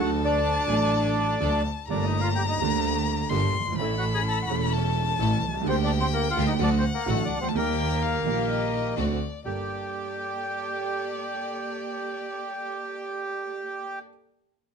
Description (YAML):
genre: tango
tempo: 127 BPM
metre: 4/4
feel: rubato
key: G minor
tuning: A4 = 440 Hz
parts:
  - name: bandoneon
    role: melody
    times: 0.0-14.0 s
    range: A3 to A5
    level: -28 LUFS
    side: equal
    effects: none
  - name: dark violin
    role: second line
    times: 0.0-14.0 s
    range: D5 to C6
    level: -32 LUFS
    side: left 6 dB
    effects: none
  - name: warm concert grand piano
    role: accompaniment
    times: 0.0-14.1 s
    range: E1 to A4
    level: -28 LUFS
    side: right 5 dB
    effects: none
  - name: rich studio string section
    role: stabs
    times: 0.0-14.0 s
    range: A3 to A4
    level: -37 LUFS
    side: left 1 dB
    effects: none
  - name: rich double bass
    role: bass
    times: 0.0-9.7 s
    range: E1 to Eb2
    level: -29 LUFS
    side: equal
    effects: none
room: light reverb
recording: close, detailed microphones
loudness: -24 LUFS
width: side -6 dB against mid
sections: 0.0-9.5 A section; 9.5-13.2 B section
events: none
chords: 0.0 D; 1.9 Gmadd9; 3.8 A; 5.7 Gm/D; 6.6 D; 7.5 Eb; 9.0 D7; 9.5 Gmadd9